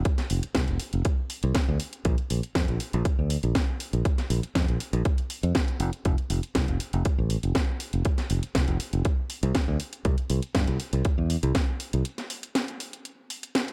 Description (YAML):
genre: nu-disco, nu disco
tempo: 120 BPM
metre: 4/4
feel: straight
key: F major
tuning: A4 = 440 Hz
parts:
  - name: fingered electric bass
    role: bass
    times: 0.0-12.0 s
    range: F1 to G2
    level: -28 LUFS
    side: equal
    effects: sidechain pumping
  - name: electronic kick drum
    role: drums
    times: 0.1-11.7 s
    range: none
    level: -28 LUFS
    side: equal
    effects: overdrive
  - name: house drum kit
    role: drums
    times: 0.1-13.7 s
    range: hi-hat, snare drum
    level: -34 LUFS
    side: equal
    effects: overdrive
room: little or no reverb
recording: none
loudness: -27 LUFS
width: mono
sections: 0.0-13.7 A section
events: break 12.1-13.7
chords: none